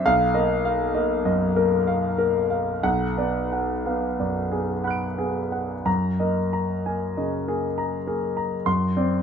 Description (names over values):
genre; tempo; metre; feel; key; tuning
classical, impressionist solo piano; 57-71 BPM; 3/4; rubato; unclear; A4 = 440 Hz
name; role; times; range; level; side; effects
clear grand piano; solo; 0.0-9.2 s; B1 to D7; -21 LUFS; left 1 dB; none
room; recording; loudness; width
light reverb; minimal, uncompressed stereo recording; -22 LUFS; side -7 dB against mid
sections
0.0-9.2 A section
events
none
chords
0.1 Bmaj7#11; 2.8 Bm6; 5.9 F#69; 8.7 D7/F#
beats
| 0.06 0.94 1.86 | 2.83 3.85 4.84 | 5.86 6.84 7.78 | 8.66